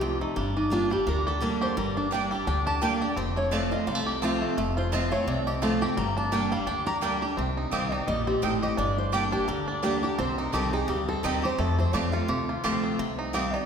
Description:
bluegrass; 171 BPM; 4/4; swing 56% on 8ths; G minor; A4 = 435 Hz
picked steel-string acoustic guitar; melody; 0.0-13.7 s; D4 to Bb5; -30 LUFS; equal
picked steel-string acoustic guitar; accompaniment; 0.0-13.7 s; F2 to G4; -29 LUFS; equal
bluegrass banjo; arpeggios; 0.0-13.7 s; F3 to G4; -31 LUFS; right 1 dB
upright bass; bass; 0.0-13.6 s; F1 to F2; -32 LUFS; left 1 dB
mandolin; stabs; 2.1-13.4 s; Bb3 to A5; -34 LUFS; right 4 dB
wet scoring stage reverb, RT60 1.6 s; recorded in a church or concert hall; -24 LUFS; side -7 dB against mid
0.0-7.4 A section; 7.4-13.7 B section
0.4 Gm; 3.2 F; 6.0 Gm; 7.4 Cm; 8.8 Gm; 10.2 Cm; 11.6 F; 13.0 Cm

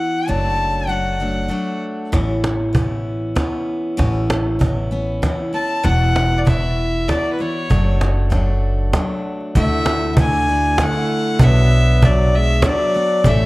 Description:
acoustic folk duo or small band; 97 BPM; 3/4; straight; A4 = 440 Hz
bright fiddle; melody; 0.0-1.8, 5.5-13.5 s; B4 to A5; -20 LUFS; left 2 dB; analog delay
picked steel-string acoustic guitar; accompaniment; 0.0-13.5 s; E2 to A4; -23 LUFS; equal
upright bass; bass; 0.3-13.5 s; E1 to D2; -18 LUFS; equal
cajon; percussion; 2.1-13.4 s; -19 LUFS; right 1 dB
mellow alto saxophone; second line; 9.6-13.5 s; F#3 to D4; -23 LUFS; right 2 dB
light reverb, small room ambience; -15 LUFS; side -20 dB against mid
0.0-9.6 A section; 9.6-13.5 B section
0.3 D/F#; 2.1 Aadd9; 5.8 Esus2; 7.7 D/F#; 9.6 Dadd9; 11.4 Bm

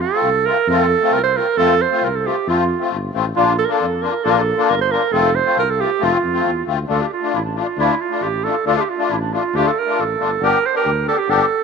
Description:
klezmer; 136 BPM; 2/4; straight; F major, D minor from 6.9 s; A4 = 440 Hz
breathy clarinet; melody; 0.0-11.6 s; D4 to C5; -18 LUFS; right 8 dB
breathy tuba; bass; 0.0-11.4 s; F1 to F2; -24 LUFS; left 1 dB
musette accordion; accompaniment; 0.1-11.6 s; A3 to G4; -20 LUFS; left 12 dB
moderate echo chamber reverb, RT60 2.4 s; 1960s-style stereo with parts hard left and right; -15 LUFS; side -5 dB against mid
0.0-6.9 A section; 6.9-11.6 B section
0.0 F; 3.4 Bb; 5.1 F; 6.9 Dm; 10.4 G

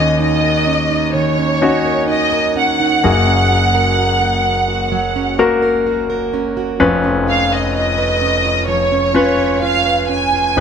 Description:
pop; 64 BPM; 4/4; straight; A4 = 439 Hz
warm studio violin section; melody; 0.0-10.6 s; C#5 to G#5; -16 LUFS; right 1 dB
clear concert grand piano; accompaniment; 0.0-10.6 s; E#1 to B4; -16 LUFS; left 3 dB
fingerpicked plugged-in steel-string acoustic guitar; arpeggios; 0.0-10.6 s; G#2 to B4; -21 LUFS; right 8 dB; tape echo
moderate recital hall reverb, RT60 1.5 s; -13 LUFS; side -7 dB against mid
0.0-10.6 A section
0.0 D#m7; 3.0 F#add9; 6.8 C#7/E#

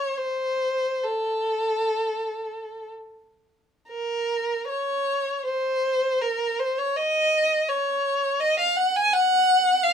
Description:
classical, free, expressive piece for unaccompanied violin; 53-86 BPM; 3/4; rubato; A4 = 440 Hz
rich violin; solo; 0.0-9.9 s; A4 to Ab5; -22 LUFS; equal
light reverb; close, detailed microphones; -22 LUFS; side -7 dB against mid
0.0-3.9 A section; 3.9-9.9 B section

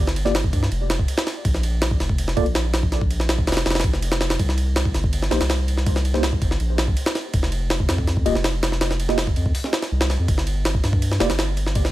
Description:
drum and bass, jungle; 163 BPM; 4/4; straight; A4 = 440 Hz
soft dub sub bass; bass; 0.0-11.9 s; Eb1 to G2; -22 LUFS; equal
jungle sampler-style drum kit; drums; 0.1-11.9 s; hi-hat, kick drum, ride cymbal, snare drum; -21 LUFS; equal; small room ambience
mellow tine electric piano; stabs; 0.3-2.4, 5.3-11.3 s; Bb3 to Eb5; -27 LUFS; right 1 dB; medium stereo tremolo, dub echo
little or no reverb; -19 LUFS; side -15 dB against mid
0.0-11.9 A section
0.0 G7(no3); 1.4 Bb5; 4.4 C7(no3); 7.3 N.C.

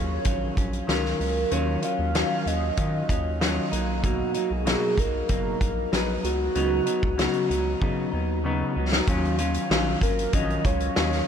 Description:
indie pop, bedroom pop; 95 BPM; 4/4; straight; Eb minor; A4 = 440 Hz
soft octave-layered synth lead; melody; 0.0-11.3 s; F#4 to F5; -29 LUFS; right 2 dB; phaser, analog chorus, tape echo
semi-hollow electric guitar; accompaniment; 0.0-11.3 s; B2 to F4; -28 LUFS; left 2 dB; wide subtle chorus, warbly pitch drift
round analog bass; bass; 0.0-11.2 s; F#1 to Eb3; -29 LUFS; right 1 dB
loose indie drum kit; drums; 0.2-11.3 s; hi-hat, kick drum, snare drum; -27 LUFS; equal
moderate huge ambient reverb, RT60 5.0 s; dreamy mix soaked in reverb; -22 LUFS; side -8 dB against mid
0.0-9.1 A section; 9.1-11.3 B section
drum fill 7.8-9.1
0.0 Ebm9; 3.7 Bmaj7; 6.2 Db9sus4; 9.1 Ebm9

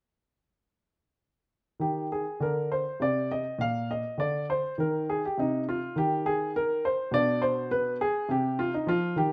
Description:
classical, baroque-style suite movement for grand piano; 102 BPM; 3/4; rubato; A4 = 440 Hz
warm baby grand piano; solo; 1.8-9.3 s; Bb2 to F5; -28 LUFS; equal
moderate stone room reverb, RT60 0.9 s; -29 LUFS; mono
1.8-9.3 A section
1.8 Cm9; 3.6 Bb; 4.8 N.C.; 5.4 Cm; 7.1 Bm6; 8.3 N.C.

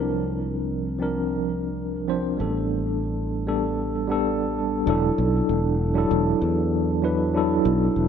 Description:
sunset chillout; 97 BPM; 4/4; straight; E minor; A4 = 442 Hz
tine electric piano; accompaniment; 0.0-8.1 s; F3 to C5; -23 LUFS; equal; medium stereo tremolo, auto-pan, ping-pong delay
sustaining fretless electric bass; bass; 0.0-8.1 s; E1 to E2; -26 LUFS; equal; lush chorus
moderate lush hall reverb, RT60 2.4 s; -21 LUFS; side -7 dB against mid
0.0-4.9 A section; 4.9-8.1 B section
0.0 C9sus4; 2.4 A9sus4; 4.9 E9sus4

